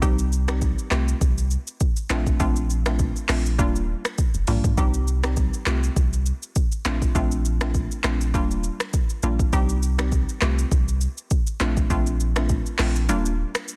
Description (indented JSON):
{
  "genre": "afrobeats",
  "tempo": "101 BPM",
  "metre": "4/4",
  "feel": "swing 55% on 16ths",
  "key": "unclear",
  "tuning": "A4 = 435 Hz",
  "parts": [
    { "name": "hollow square pluck", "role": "accompaniment", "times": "0.0-13.8 s", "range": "G3 to G4", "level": "-30 LUFS", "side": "equal", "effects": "chorus" },
    { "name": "punchy sub bass", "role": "bass", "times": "0.0-13.4 s", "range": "Eb1 to C2", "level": "-26 LUFS", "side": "equal", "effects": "none" },
    { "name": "afro-pop drum kit", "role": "drums", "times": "0.0-13.8 s", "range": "finger snaps, handclaps, hi-hat, kick drum, rim click, shaker, toms", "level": "-26 LUFS", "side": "equal", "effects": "soft clipping on snare" }
  ],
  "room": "little or no reverb",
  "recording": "dense, heavily limited modern master",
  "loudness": "-23 LUFS",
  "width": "mono",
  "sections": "0.0-13.8 A section",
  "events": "break 13.1-13.8",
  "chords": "0.0 Cm; 0.9 Fadd9/C; 2.1 Bbmaj7; 3.6 Ebmaj7; 4.8 Cm; 5.7 Fadd9/C; 6.9 Bbmaj7; 8.3 Ebmaj7; 9.5 Cm; 10.4 Fadd9/C; 11.6 Bbmaj7; 13.1 Ebmaj7"
}